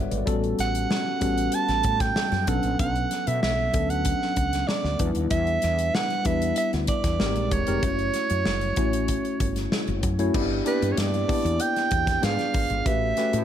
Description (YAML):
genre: polished 1980s jazz-funk pop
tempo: 95 BPM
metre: 4/4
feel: straight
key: B minor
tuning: A4 = 440 Hz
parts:
  - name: tine electric piano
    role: accompaniment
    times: 0.0-13.4 s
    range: F#3 to F#5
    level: -27 LUFS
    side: left 2 dB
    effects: wide subtle chorus
  - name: woody fretless electric bass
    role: bass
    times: 0.0-13.4 s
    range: E1 to B2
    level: -28 LUFS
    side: equal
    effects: analog chorus
  - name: modern studio drum kit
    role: drums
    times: 0.1-13.4 s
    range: crash cymbal, hi-hat, kick drum, snare drum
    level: -28 LUFS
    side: equal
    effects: gated reverb
  - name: warm soprano saxophone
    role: melody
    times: 0.6-13.4 s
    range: B4 to A5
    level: -27 LUFS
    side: right 4 dB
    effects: none
room: light reverb, studio reverb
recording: none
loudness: -22 LUFS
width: side -10 dB against mid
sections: 0.0-10.3 A section; 10.3-13.4 B section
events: none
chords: 0.3 A13; 2.5 Bm9; 5.0 Em7; 7.2 G#maj9; 7.8 F#m7; 10.3 G6; 12.2 G#dim7; 12.9 A13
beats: | 0.27 0.90 1.53 2.16 | 2.79 3.42 4.05 4.68 | 5.31 5.94 6.57 7.20 | 7.83 8.46 9.09 9.72 | 10.35 10.97 11.60 12.23 | 12.86